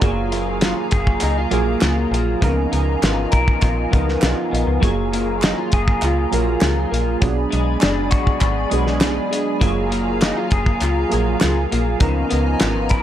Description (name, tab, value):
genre	indie pop, bedroom pop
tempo	100 BPM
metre	4/4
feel	straight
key	F# major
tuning	A4 = 439 Hz
part	electric guitar through a small old amp	accompaniment	0.0-13.0 s	C#3 to A#4	-23 LUFS	left 4 dB	analog chorus, vibrato effect
part	warbly lo-fi synth keys	accompaniment	0.0-13.0 s	E#3 to B5	-24 LUFS	right 5 dB	chorus
part	hollow soft pad	sustained chords	0.0-13.0 s	G#4 to B5	-27 LUFS	right 1 dB	ensemble chorus
part	slap-like FM bass	bass	0.0-13.0 s	F#1 to C#2	-22 LUFS	equal	none
part	cloth-damped thuddy drum kit	drums	0.0-13.0 s	hi-hat, kick drum, snare drum	-19 LUFS	equal	vintage 12-bit sampler grit
part	group handclap	percussion	0.6-12.7 s	none	-30 LUFS	right 3 dB	none
room	light reverb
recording	none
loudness	-16 LUFS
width	side -11 dB against mid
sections	0.0-13.0 A section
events	synth keys fill 12.6-13.0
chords	0.0 F#maj9; 2.4 C#13; 4.8 F#maj9; 7.2 Bm6; 9.6 F#maj9; 12.0 C#13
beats	| 0.03 0.63 1.23 1.83 | 2.43 3.03 3.63 4.22 | 4.83 5.42 6.02 6.62 | 7.22 7.82 8.42 9.02 | 9.62 10.21 10.81 11.41 | 12.01 12.61